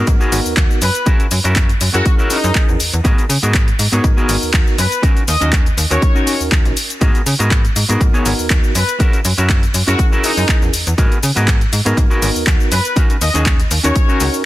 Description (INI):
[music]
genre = filtered disco house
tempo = 121 BPM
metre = 4/4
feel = swing 54% on 16ths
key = G# minor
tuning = A4 = 439 Hz
[part]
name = mellow tine electric piano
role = accompaniment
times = 0.0-14.4 s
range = B3 to A#4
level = -23 LUFS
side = equal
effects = phaser, sidechain pumping
[part]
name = semi-hollow electric guitar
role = riff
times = 0.0-14.3 s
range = B3 to C#5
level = -22 LUFS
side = equal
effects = sidechain pumping
[part]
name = slap-like FM bass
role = bass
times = 0.0-14.3 s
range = G#1 to C#3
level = -18 LUFS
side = equal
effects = tube saturation, sidechain pumping
[part]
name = electronic kick drum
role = drums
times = 0.1-14.1 s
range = none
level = -14 LUFS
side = equal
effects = overdrive
[part]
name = punchy analog drum machine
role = drums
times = 0.1-14.4 s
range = cabasa, handclaps, hi-hat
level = -20 LUFS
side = left 1 dB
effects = sidechain pumping on hats, sidechain pumping on perc, sidechain pumping on cymbals
[part]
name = clear trumpet section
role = melody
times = 0.8-14.3 s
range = D#4 to D#5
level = -22 LUFS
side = left 2 dB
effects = vintage 12-bit sampler grit, sidechain pumping
[sound]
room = little or no reverb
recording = dense, heavily limited modern master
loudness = -12 LUFS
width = side -16 dB against mid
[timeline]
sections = 0.0-14.5 A section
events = none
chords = 0.0 G#m9; 1.1 F#7; 3.0 G#m9; 5.0 D#m7; 7.0 G#m9; 9.0 F#7; 11.0 G#m9; 13.0 D#m7